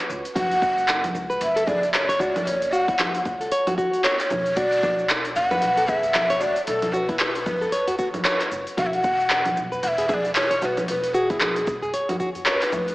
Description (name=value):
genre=organic downtempo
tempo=114 BPM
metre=4/4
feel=swing 59% on 16ths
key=F# minor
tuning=A4 = 440 Hz
part: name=breathy mellow ney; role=melody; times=0.0-12.9 s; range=G#4 to F#5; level=-23 LUFS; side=equal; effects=tape echo
part: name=upright bass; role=bass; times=0.1-12.9 s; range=E1 to D2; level=-37 LUFS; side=equal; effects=tube saturation
part: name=deep house drum kit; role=drums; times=0.1-12.9 s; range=congas, handclaps, hi-hat, shaker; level=-25 LUFS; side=equal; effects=overdrive
part: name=flamenco guitar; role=arpeggios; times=0.4-12.6 s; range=E4 to C#5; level=-26 LUFS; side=equal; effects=tape echo
part: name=electronic kick drum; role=drums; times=0.4-12.3 s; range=none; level=-32 LUFS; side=equal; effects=overdrive
part: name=udu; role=percussion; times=5.5-12.4 s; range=none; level=-51 LUFS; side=equal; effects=none
room=wet lush hall reverb, RT60 1.9 s, small room ambience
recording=big arena sound, AM radio sound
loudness=-20 LUFS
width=side -19 dB against mid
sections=0.0-12.9 A section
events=none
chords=0.0 F#5; 4.6 B5; 8.8 E5